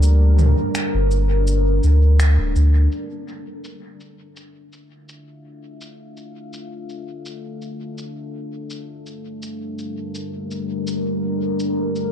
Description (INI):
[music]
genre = ambient dub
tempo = 83 BPM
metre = 4/4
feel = straight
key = D minor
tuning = A4 = 440 Hz
[part]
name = deep dark ambient pad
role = sustained chords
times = 0.0-12.1 s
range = G3 to F5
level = -26 LUFS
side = equal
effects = chorus, built-in reverb
[part]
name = warm sub bass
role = bass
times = 0.0-2.9 s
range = D1 to D2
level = -14 LUFS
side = equal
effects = none
[part]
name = organic electronic drum kit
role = drums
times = 0.0-12.1 s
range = cabasa, finger snaps, toms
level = -30 LUFS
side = right 1 dB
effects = low-pass filter on perc, low-pass filter on toms, low-pass filter on snare, low-pass filter on room, dub echo
[sound]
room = little or no reverb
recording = echo-heavy mix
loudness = -16 LUFS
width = side -10 dB against mid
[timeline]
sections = 0.0-2.9 A section; 2.9-12.1 B section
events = band accent 2.2-2.6; filter sweep on ambient pad 2.9-12.1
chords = 0.0 Gm; 2.9 Dm; 8.7 Gm